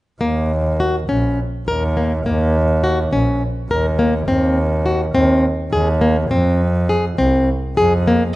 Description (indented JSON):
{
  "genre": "contemporary instrumental, chamber music in an uneven meter",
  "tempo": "206 BPM (eighths)",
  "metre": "7/8",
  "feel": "straight",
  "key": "Eb dorian",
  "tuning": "A4 = 445 Hz",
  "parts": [
    { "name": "flamenco guitar", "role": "arpeggios", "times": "0.2-8.2 s", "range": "Bb3 to Bb4", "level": "-18 LUFS", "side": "left 1 dB", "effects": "none" },
    { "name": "rich double bass", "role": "bass", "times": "0.2-8.3 s", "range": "Bb1 to F2", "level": "-18 LUFS", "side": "right 1 dB", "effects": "none" }
  ],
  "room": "light reverb",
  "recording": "nothing above 10.6 kHz",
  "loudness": "-15 LUFS",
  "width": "side -17 dB against mid",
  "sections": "0.2-8.4 A section",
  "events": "none",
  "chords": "0.2 Eb7(no3); 4.3 Ab/Eb (rootless); 6.3 Fm"
}